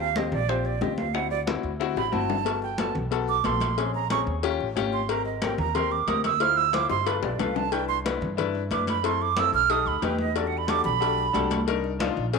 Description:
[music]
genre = Afro-Cuban jazz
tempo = 182 BPM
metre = 4/4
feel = straight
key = G major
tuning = A4 = 440 Hz
[part]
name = silver concert flute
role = second line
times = 0.0-11.6 s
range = C5 to F6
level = -26 LUFS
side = right 11 dB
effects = none
[part]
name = warm grand piano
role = accompaniment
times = 0.0-12.4 s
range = B3 to C5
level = -29 LUFS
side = left 12 dB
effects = none
[part]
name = upright bass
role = bass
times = 0.0-12.4 s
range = G1 to G2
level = -32 LUFS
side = right 1 dB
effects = none
[part]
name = bongos and cowbell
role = percussion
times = 0.0-12.4 s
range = none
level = -32 LUFS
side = left 12 dB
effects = none
[part]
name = congas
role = percussion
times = 0.0-12.4 s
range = none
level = -32 LUFS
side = right 1 dB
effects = none
[sound]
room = wet spring reverb, RT60 1.7 s, studio reverb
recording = 1960s-style stereo with parts hard left and right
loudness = -23 LUFS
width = side -4 dB against mid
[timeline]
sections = 0.0-2.5 A section; 2.5-12.4 A section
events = flute solo 0.0-12.4; drum fill 1.8-2.5, 6.9-7.7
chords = 0.0 Eb6; 1.1 D7; 2.5 Gmaj9; 3.8 Bbm7; 4.4 Eb9; 5.1 Abmaj9; 6.4 Dm7; 7.1 G9; 7.7 Cmaj9; 9.0 F#m7b5; 9.7 B7alt; 10.4 Em11; 11.7 Cm7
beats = 0.16 0.49 0.82 | 1.15 1.48 1.80 2.13 | 2.46 2.79 3.12 3.45 | 3.78 4.11 4.44 4.76 | 5.09 5.42 5.75 6.08 | 6.41 6.74 7.07 7.40 | 7.73 8.05 8.38 8.71 | 9.04 9.37 9.70 10.03 | 10.36 10.69 11.02 11.35 | 11.68 12.01 12.34

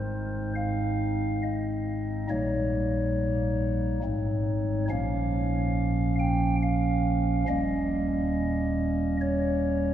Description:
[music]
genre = classical, chorale-style piece for pipe organ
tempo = 70 BPM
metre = 3/4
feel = rubato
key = unclear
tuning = A4 = 443 Hz
[part]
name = chamber organ, stopped flute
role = solo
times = 0.0-9.9 s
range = Eb1 to G5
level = -25 LUFS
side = equal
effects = none
[sound]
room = wet church reverb, RT60 4.0 s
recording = heard from further back in the room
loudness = -25 LUFS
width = side -11 dB against mid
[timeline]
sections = 0.0-9.9 A section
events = none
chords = 0.0 Ab; 2.3 Eb7/Bb; 4.0 Ab; 4.9 Bbm; 7.5 Eb7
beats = 0.56 1.45 | 2.31 3.18 4.04 | 4.90 5.76 6.62 | 7.48 8.35 9.21

